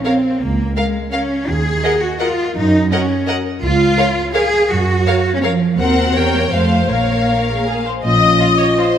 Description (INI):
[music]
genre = cinematic, playful, whimsical film cue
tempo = 166 BPM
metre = 3/4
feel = straight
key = Bb minor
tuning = A4 = 440 Hz
[part]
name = warm studio violin section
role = melody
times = 0.0-8.9 s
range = F4 to G5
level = -23 LUFS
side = left 2 dB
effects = none
[part]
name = rich studio viola section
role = accompaniment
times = 0.0-9.0 s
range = Bb4 to Eb5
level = -24 LUFS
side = equal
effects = none
[part]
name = mellow French horn section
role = sustained chords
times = 0.0-9.0 s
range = Db4 to F5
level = -23 LUFS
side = left 3 dB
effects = none
[part]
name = rich studio cello section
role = bass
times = 0.0-8.3 s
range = Bb2 to Ab4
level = -17 LUFS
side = right 1 dB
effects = none
[part]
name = warm studio violin section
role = second line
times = 0.1-9.0 s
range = Ab4 to F5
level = -24 LUFS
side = left 2 dB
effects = none
[part]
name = rich studio double bass section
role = bass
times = 0.4-8.3 s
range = Bb1 to Gb2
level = -19 LUFS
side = right 2 dB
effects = none
[part]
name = large flute ensemble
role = second line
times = 7.7-9.0 s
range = Ab5 to Eb6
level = -18 LUFS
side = left 8 dB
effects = none
[sound]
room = moderate scoring stage reverb, RT60 1.5 s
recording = none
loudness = -13 LUFS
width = side -9 dB against mid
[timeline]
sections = 0.0-8.0 A section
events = none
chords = 0.4 Bbm/Db; 1.5 Ebm; 2.6 Ebm/Gb; 3.6 Bbm/Db; 4.7 Gbmaj7; 5.8 Cm7b5/Eb; 6.2 Edim7; 6.5 F; 6.9 Bbm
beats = 0.05 | 0.41 0.77 1.12 | 1.48 1.84 2.20 | 2.56 2.92 3.27 | 3.63 3.98 4.34 | 4.70 5.07 5.43 | 5.79 6.16 6.53 | 6.91 7.29 7.67 | 8.05 8.41 8.78